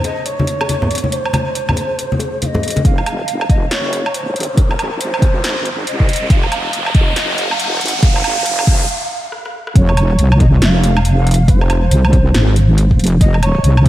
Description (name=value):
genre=deep dubstep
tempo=139 BPM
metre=4/4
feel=swing 61% on 16ths, half-time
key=F phrygian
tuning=A4 = 440 Hz
part: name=mellow hollow shakuhachi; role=melody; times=0.0-13.9 s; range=Bb4 to Gb5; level=-22 LUFS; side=right 1 dB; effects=dub echo
part: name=deep house drum kit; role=drums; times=0.0-13.9 s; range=hi-hat, rim click, snare drum, woodblock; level=-21 LUFS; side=equal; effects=overdrive, high-pass filter on perc, high-pass filter on hats, high-pass filter on snare, high-pass filter on room
part: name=bongos and congas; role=percussion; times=0.0-2.8 s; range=none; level=-19 LUFS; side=left 1 dB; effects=none
part: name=electronic kick drum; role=drums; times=2.8-13.9 s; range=none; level=-12 LUFS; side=equal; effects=overdrive
part: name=riser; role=sound effects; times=4.1-8.9 s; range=none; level=-21 LUFS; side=right 1 dB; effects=none
part: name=wobble bass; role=bass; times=2.9-13.9 s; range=F1 to C2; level=-14 LUFS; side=equal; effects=chorus, high-pass filter
room=moderate lush hall reverb, RT60 2.0 s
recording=dreamy mix soaked in reverb, vinyl crackle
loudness=-12 LUFS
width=side -14 dB against mid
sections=0.0-2.8 A section; 2.8-9.8 B section; 9.8-13.9 C section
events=build-up 2.8-9.8; riser 4.1-8.9; break 8.9-9.8; drum fill 9.3-9.8; drop 9.8-13.9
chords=0.0 N.C.; 2.8 F5